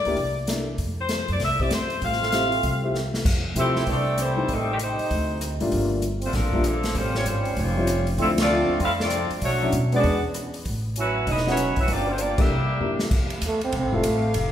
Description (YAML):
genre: jazz, big band swing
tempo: 195 BPM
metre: 4/4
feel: swing 63% on 8ths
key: F major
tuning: A4 = 440 Hz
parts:
  - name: bright saxophone section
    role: melody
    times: 0.0-13.0 s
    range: Eb3 to F5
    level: -26 LUFS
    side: left 2 dB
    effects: none
  - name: upright bass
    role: bass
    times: 0.0-14.5 s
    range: E1 to C3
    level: -27 LUFS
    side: equal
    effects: none
  - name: warm grand piano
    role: accompaniment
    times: 0.1-14.0 s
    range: F3 to A4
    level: -28 LUFS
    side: left 2 dB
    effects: none
  - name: swinging big-band drum kit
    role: drums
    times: 0.1-14.4 s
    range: crash cymbal, hi-hat, kick drum, ride cymbal, rim click, snare drum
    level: -28 LUFS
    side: equal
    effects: none
  - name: mellow trombone section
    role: second line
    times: 2.0-13.0 s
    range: C3 to A4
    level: -29 LUFS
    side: right 4 dB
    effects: none
  - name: warm saxophone section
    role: sustained chords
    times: 13.1-14.5 s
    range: E3 to F5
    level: -33 LUFS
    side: left 1 dB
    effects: none
  - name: warm trombone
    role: melody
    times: 13.5-14.4 s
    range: A3 to C4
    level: -24 LUFS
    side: right 1 dB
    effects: none
room: wet recital hall reverb, RT60 1.8 s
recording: recorded in a church or concert hall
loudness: -21 LUFS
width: side -10 dB against mid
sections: 0.0-3.3 A section; 3.3-13.1 B section; 13.1-14.5 C section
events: drum fill 2.9-3.3, 12.8-13.1; band accent 8.3, 12.3; trombone solo 13.1-14.5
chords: 0.2 C7; 0.8 Fmaj9; 4.5 Am7b5; 5.1 D5; 5.7 Gm9; 7.0 A7alt; 8.2 Dm9; 9.4 Bm11; 10.0 E9; 10.7 A69; 11.9 Gm7; 12.5 C9; 13.1 Fmaj9